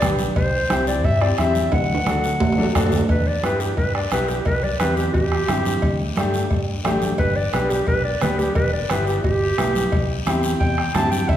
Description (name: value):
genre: latin, cumbia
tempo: 176 BPM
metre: 4/4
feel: straight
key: unclear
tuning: A4 = 440 Hz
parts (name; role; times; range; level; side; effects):
- mellow clarinet; melody; 0.0-11.4 s; G4 to A5; -23 LUFS; equal; none
- bright upright piano; accompaniment; 0.0-11.2 s; A3 to A4; -25 LUFS; left 2 dB; none
- fingered electric bass; bass; 0.0-11.4 s; E1 to G2; -25 LUFS; equal; none
- bombo; percussion; 0.0-11.4 s; none; -24 LUFS; equal; none
- congas; percussion; 0.0-11.4 s; none; -29 LUFS; right 1 dB; none
- cowbell and timbales; percussion; 0.0-11.4 s; none; -28 LUFS; right 3 dB; none
- guiro; percussion; 0.0-11.4 s; none; -35 LUFS; left 4 dB; none
room: wet recital hall reverb, RT60 1.5 s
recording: recorded in a church or concert hall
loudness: -18 LUFS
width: side -11 dB against mid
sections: 0.0-3.1 A section; 3.1-11.4 B section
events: drum fill 1.7-3.1; clarinet solo 3.1-11.4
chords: 0.4 C; 1.7 D; 3.1 Em; 4.5 C; 5.8 Dsus4; 7.2 G; 8.6 Em; 9.9 C